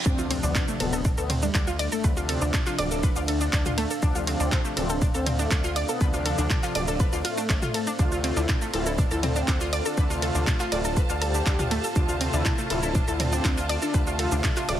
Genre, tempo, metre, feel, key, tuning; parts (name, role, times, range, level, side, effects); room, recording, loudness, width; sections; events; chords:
melodic techno; 121 BPM; 4/4; straight; D minor; A4 = 442 Hz
reverse cymbal and impact; sound effects; 0.0-2.0 s; -35 LUFS; right 1 dB
mellow synth brass; melody; 0.1-14.3 s; G3 to G4; -33 LUFS; left 2 dB; chorus, ping-pong delay
deep dark ambient pad; sustained chords; 0.1-14.8 s; D4 to F5; -35 LUFS; right 2 dB; chorus, built-in reverb, sidechain pumping
analog pluck; arpeggios; 0.1-14.7 s; A3 to D6; -30 LUFS; equal; chorus, sidechain pumping, ping-pong delay
brassy analog pad; stabs; 0.1-14.8 s; C3 to F4; -34 LUFS; left 2 dB; chorus, sidechain pumping, ping-pong delay
gritty driven synth bass; bass; 0.1-14.8 s; D1 to D2; -28 LUFS; equal; sidechain pumping
electronic kick drum; drums; 0.1-14.5 s; -24 LUFS; equal
punchy analog drum machine; drums; 0.1-14.8 s; handclaps, hi-hat, ride cymbal, shaker, toms; -30 LUFS; right 1 dB; sidechain pumping on perc, high-pass filter on perc, sidechain pumping on hats, high-pass filter on hats, high-pass filter on snare, sidechain pumping on toms, high-pass filter on toms, sidechain pumping on cymbals, high-pass filter on cymbals
rich studio string section; texture; 8.0-14.8 s; F4 to A5; -35 LUFS; right 2 dB; sidechain pumping
light reverb, digital ambience; heavily compressed radio sound, multiband compression; -22 LUFS; side -11 dB against mid
0.1-14.8 A section
drop 0.1-14.8; impact 0.1-2.0
0.1 Dm7